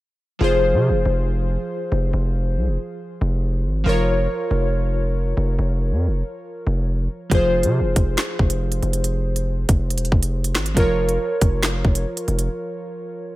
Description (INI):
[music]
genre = hip hop, drill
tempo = 139 BPM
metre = 4/4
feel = half-time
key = F minor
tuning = A4 = 440 Hz
[part]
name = glassy digital keys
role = accompaniment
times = 0.4-13.4 s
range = F3 to Db5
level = -24 LUFS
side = equal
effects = chorus
[part]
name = distorted 808-style bass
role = bass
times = 0.4-12.5 s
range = E1 to C3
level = -20 LUFS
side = equal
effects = distortion
[part]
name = drill drum kit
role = drums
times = 7.3-12.5 s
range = handclaps, hi-hat, kick drum, snare drum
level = -19 LUFS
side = equal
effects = none
[sound]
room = digital ambience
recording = none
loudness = -18 LUFS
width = side -17 dB against mid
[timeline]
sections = 0.4-13.4 A section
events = break 12.5-13.4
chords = 0.4 Fm; 3.9 Bbm/F; 7.3 Fm; 10.8 Bbm/F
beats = | 0.41 0.84 1.27 1.70 | 2.13 2.57 3.00 3.43 | 3.86 4.29 4.72 5.16 | 5.59 6.02 6.45 6.88 | 7.31 7.75 8.18 8.61 | 9.04 9.47 9.90 10.34 | 10.77 11.20 11.63 12.06 | 12.49 12.93 13.36